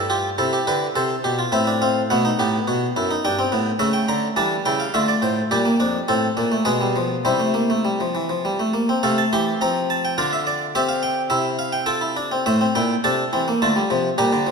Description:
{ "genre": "classical, baroque-style 4-part fugue for harpsichord", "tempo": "105 BPM", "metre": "3/4", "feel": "straight", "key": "unclear", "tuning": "A4 = 439 Hz", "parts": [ { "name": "harpsichord", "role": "solo", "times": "0.0-14.5 s", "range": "F2 to C6", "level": "-18 LUFS", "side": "equal", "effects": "none" } ], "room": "moderate concert hall reverb, RT60 2.0 s", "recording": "none", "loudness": "-18 LUFS", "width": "side -5 dB against mid", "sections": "0.0-9.0 A section; 9.0-12.5 B section; 12.5-14.5 A section", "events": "none", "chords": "0.4 C; 1.5 Fmaj7/A; 2.1 B7; 3.2 Gadd9; 3.8 A7/C#; 4.9 Dm; 5.5 Gm7; 6.7 G7b9/B; 7.2 C; 10.2 Dmadd9; 10.7 C; 11.9 F/C; 12.5 Am; 13.6 Dm7" }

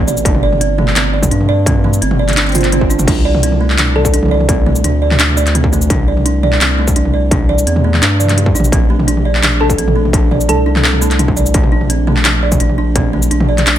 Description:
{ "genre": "half-time drum and bass", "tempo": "170 BPM", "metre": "4/4", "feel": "half-time", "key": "unclear", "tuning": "A4 = 440 Hz", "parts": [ { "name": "buzzing kalimba", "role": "arpeggios", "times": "0.0-13.8 s", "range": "A3 to D5", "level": "-17 LUFS", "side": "right 3 dB", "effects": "dub echo" }, { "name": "saturated sub bass", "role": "bass", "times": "0.0-13.8 s", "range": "G1 to G2", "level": "-15 LUFS", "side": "equal", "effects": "tube saturation" }, { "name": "industrial drum kit", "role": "drums", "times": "0.1-13.8 s", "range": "crash cymbal, handclaps, hi-hat, shaker, toms", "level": "-16 LUFS", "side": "equal", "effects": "none" }, { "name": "electronic kick drum", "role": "drums", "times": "0.3-13.0 s", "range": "none", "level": "-15 LUFS", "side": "equal", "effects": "distortion" }, { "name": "swell", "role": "sound effects", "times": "2.5-3.1 s", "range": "none", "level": "-20 LUFS", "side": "right 1 dB", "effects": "none" }, { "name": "thumb-piano-like synth pluck", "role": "melody", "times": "4.0-4.2, 9.6-10.8 s", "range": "A4", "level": "-21 LUFS", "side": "equal", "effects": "analog chorus, cassette tape, dub echo" } ], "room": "light reverb, digital ambience", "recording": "none", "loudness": "-10 LUFS", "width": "side -11 dB against mid", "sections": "0.0-13.8 A section", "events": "swell 2.5-3.1", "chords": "0.0 Gsus2; 3.1 Csus2; 8.7 Bbadd9" }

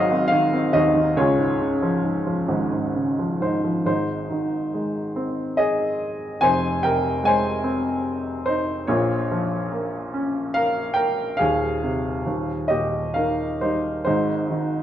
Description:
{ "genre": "classical, lyrical solo piano", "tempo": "64-74 BPM", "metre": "3/4", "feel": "rubato", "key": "Db major, Ab major from 3.9 s", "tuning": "A4 = 439 Hz", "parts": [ { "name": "warm upright piano", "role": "solo", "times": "0.0-14.8 s", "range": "Eb1 to Ab5", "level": "-20 LUFS", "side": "equal", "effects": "none" } ], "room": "moderate recital hall reverb, RT60 1.4 s", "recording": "dark, warm production", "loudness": "-20 LUFS", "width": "side -11 dB against mid", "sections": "0.0-3.9 A section; 3.9-14.8 B section", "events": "none", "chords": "0.0 Ab7; 1.2 Db; 3.9 Ab; 6.4 Fm; 8.9 Bbm; 11.4 Ab/Eb; 12.3 Eb; 14.1 Ab" }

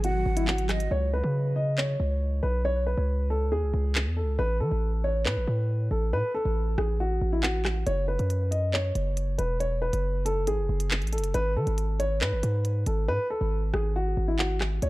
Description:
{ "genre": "hip hop, drill", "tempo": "138 BPM", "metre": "4/4", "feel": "half-time", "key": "C# minor", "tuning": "A4 = 440 Hz", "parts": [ { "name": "dark concert grand piano", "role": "melody", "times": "0.0-14.9 s", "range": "E4 to D#5", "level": "-29 LUFS", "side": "equal", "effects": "tape echo" }, { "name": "breathy jazz flute", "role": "second line", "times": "0.0-0.9 s", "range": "D#5 to F#5", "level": "-40 LUFS", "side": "right 6 dB", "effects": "tape echo" }, { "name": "granular cloud pad", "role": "sustained chords", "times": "0.0-0.9, 14.8-14.9 s", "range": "B2 to F#4", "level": "-39 LUFS", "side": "equal", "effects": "built-in reverb" }, { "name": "distorted 808-style bass", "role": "bass", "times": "0.0-14.9 s", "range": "E1 to E3", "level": "-26 LUFS", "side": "equal", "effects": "distortion" }, { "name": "drill drum kit", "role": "drums", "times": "0.0-14.9 s", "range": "handclaps, hi-hat, rim click", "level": "-31 LUFS", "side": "equal", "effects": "none" } ], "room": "small room ambience", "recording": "dark, warm production", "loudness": "-24 LUFS", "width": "side -18 dB against mid", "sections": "0.9-14.9 A section", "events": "hi-hats muted 0.9-7.9, 13.1-14.8", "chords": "0.0 G#m7; 0.9 C#7(no3); 4.4 Asus2; 7.9 F#5; 11.3 G#m" }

